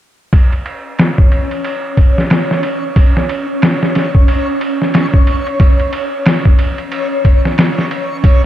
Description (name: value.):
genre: trip hop.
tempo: 91 BPM.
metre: 4/4.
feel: swing 60% on 16ths.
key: unclear.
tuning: A4 = 440 Hz.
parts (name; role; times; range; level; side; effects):
trip hop sampler-style drum kit; drums; 0.3-8.4 s; kick drum, ride cymbal, snare drum; -11 LUFS; equal; overdrive, low-pass filter on kick, studio reverb, low-pass filter on cymbals, low-pass filter on snare.
backwards swelling texture; texture; 1.1-8.5 s; C#4 to C#5; -19 LUFS; equal; built-in reverb.
room: light reverb.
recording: none.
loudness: -11 LUFS.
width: side -12 dB against mid.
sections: 0.3-8.5 A section.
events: none.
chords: none.